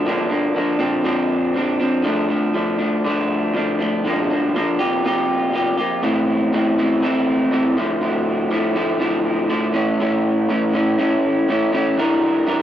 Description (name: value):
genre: rock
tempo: 121 BPM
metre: 4/4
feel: straight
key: D minor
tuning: A4 = 439 Hz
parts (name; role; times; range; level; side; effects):
- electric guitar through a small old amp; solo; 0.0-12.6 s; G2 to Bb4; -17 LUFS; equal; cassette tape, analog delay
room: wet booth ambience, RT60 0.2 s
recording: home recording on cassette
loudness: -17 LUFS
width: side -11 dB against mid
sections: 0.0-6.0 A section; 6.0-12.6 B section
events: none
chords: 0.1 Gm7; 0.8 Bbadd9; 2.1 Dm; 4.1 Gm7; 4.8 C7sus4; 6.0 Am; 7.8 Dmadd9; 9.8 A; 12.0 Em7b5